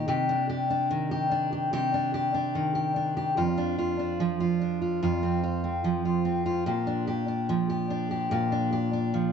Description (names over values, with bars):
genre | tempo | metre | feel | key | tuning
pop | 73 BPM | 4/4 | straight | Bb major | A4 = 439 Hz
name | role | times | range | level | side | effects
fingerpicked steel-string acoustic guitar | solo | 0.0-9.3 s | F2 to G4 | -25 LUFS | equal | none
room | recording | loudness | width
moderate plate reverb, RT60 3.0 s | nothing above 7.8 kHz | -25 LUFS | side -7 dB against mid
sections
0.0-9.3 A section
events
none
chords
0.1 Cmadd9; 3.4 Dm/F; 5.0 F5; 6.7 Bb6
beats
| 0.09 0.91 1.73 2.55 | 3.37 4.20 5.02 5.84 | 6.66 7.48 8.31 9.13